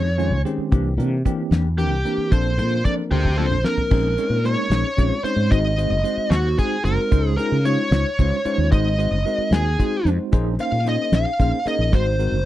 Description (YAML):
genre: electric jazz fusion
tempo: 75 BPM (dotted quarters)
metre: 6/8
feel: straight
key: Bb major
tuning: A4 = 439 Hz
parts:
  - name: smooth overdriven lead guitar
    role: melody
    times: 0.0-12.5 s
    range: Gb4 to F5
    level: -23 LUFS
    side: equal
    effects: slapback echo
  - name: mellow electric guitar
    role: stabs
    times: 0.0-12.4 s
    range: E3 to C5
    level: -29 LUFS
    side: left 11 dB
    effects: analog chorus
  - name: mellow fretless electric bass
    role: bass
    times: 0.0-12.4 s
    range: Gb1 to Db3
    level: -21 LUFS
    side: equal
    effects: none
  - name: bell-like tine electric piano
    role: accompaniment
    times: 0.2-12.4 s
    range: Eb3 to Ab5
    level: -26 LUFS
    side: right 2 dB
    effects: medium stereo tremolo
  - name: damped 70s drum kit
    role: drums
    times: 0.2-12.3 s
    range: crash cymbal, hi-hat, kick drum, snare drum, toms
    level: -19 LUFS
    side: equal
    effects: none
room: little or no reverb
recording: dry, close 1970s-style studio recording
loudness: -18 LUFS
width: side -14 dB against mid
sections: 0.0-3.9 A section; 3.9-12.5 B section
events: tine electric piano fill 0.0-0.7; drum fill 3.1-3.9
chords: 0.0 Dbmaj9; 0.7 C9; 2.3 Bbmaj9; 3.9 Bbm11; 5.5 Ab7; 7.1 Dbmaj9; 8.7 Ab7; 10.3 Bbm11; 11.9 Ab7